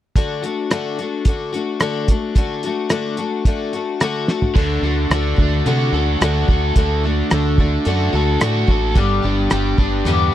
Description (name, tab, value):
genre	folk rock and heartland rock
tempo	109 BPM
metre	4/4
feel	straight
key	unclear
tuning	A4 = 439 Hz
part	picked twelve-string acoustic guitar	accompaniment	0.2-10.3 s	G2 to G4	-21 LUFS	left 5 dB	none
part	cloth-damped thuddy drum kit	drums	0.2-10.2 s	crash cymbal, hi-hat, kick drum, rim click, snare drum, toms	-17 LUFS	equal	none
part	overdriven electric guitar	riff	4.6-10.3 s	D3 to A4	-22 LUFS	right 3 dB	none
part	deep dub fingered electric bass	bass	4.6-10.3 s	G1 to C3	-19 LUFS	right 1 dB	none
room	small room ambience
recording	dry, close 1970s-style studio recording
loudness	-16 LUFS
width	side -12 dB against mid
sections	0.2-4.6 A section; 4.6-10.3 B section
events	drum fill 4.3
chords	0.2 D; 9.0 G